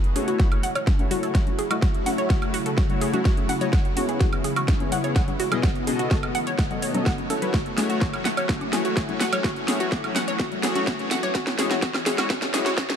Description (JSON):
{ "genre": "progressive house", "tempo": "126 BPM", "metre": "4/4", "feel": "straight", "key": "F# dorian", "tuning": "A4 = 439 Hz", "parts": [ { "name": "evolving wavetable pad", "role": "sustained chords", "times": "0.0-13.0 s", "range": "C#3 to F#4", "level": "-30 LUFS", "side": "equal", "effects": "phaser, built-in reverb, vintage 12-bit sampler grit, sidechain pumping" }, { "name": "big-room dance drum kit", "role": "drums", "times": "0.0-13.0 s", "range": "hi-hat, snare drum, woodblock", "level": "-28 LUFS", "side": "right 1 dB", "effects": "overdrive, sidechain pumping on perc, sidechain pumping on hats" }, { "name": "analog pluck", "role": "arpeggios", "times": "0.2-12.8 s", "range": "F#3 to F#5", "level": "-28 LUFS", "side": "right 1 dB", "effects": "chorus, sidechain pumping, dub echo" }, { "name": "soft supersaw", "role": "stabs", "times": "0.2-12.8 s", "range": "B2 to D#5", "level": "-30 LUFS", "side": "left 4 dB", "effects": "sidechain pumping, low-pass filter, dub echo" }, { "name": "saturated sub bass", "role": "bass", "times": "0.2-12.7 s", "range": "E1 to C#2", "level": "-44 LUFS", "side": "equal", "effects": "none" }, { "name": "congas and woodblock", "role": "percussion", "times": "0.2-13.0 s", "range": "none", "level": "-33 LUFS", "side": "left 4 dB", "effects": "overdrive, sidechain pumping on perc" }, { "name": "electronic kick drum", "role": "drums", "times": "0.4-12.9 s", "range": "none", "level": "-23 LUFS", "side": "equal", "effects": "overdrive" } ], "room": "light reverb", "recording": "dark, warm production, high-pass filter", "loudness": "-21 LUFS", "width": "side -8 dB against mid", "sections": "0.0-13.0 A section", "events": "build-up 0.0-13.0; drum fill 0.0-13.0; filter sweep on synth arpeggio sound 0.0-13.0; filter sweep on supersaw synth 0.0-13.0; filter sweep 0.0-13.0", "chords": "0.0 F#m7; 3.7 C#m7; 5.6 B7; 7.5 F#m7; 11.3 C#m7" }